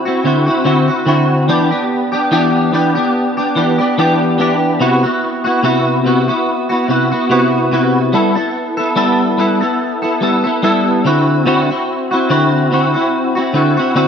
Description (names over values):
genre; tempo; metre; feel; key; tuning
indie pop; 72 BPM; 4/4; swing 55% on 16ths; G major; A4 = 440 Hz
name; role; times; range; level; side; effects
clean electric guitar; solo; 0.0-14.1 s; C3 to A4; -12 LUFS; equal; ensemble chorus, vibrato effect
room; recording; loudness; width
moderate plate reverb, RT60 2.4 s; dark, warm production; -12 LUFS; side -7 dB against mid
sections
0.0-14.1 A section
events
none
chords
0.0 D9; 1.5 Em7; 4.8 Cmaj7#11; 8.1 G69; 11.0 D9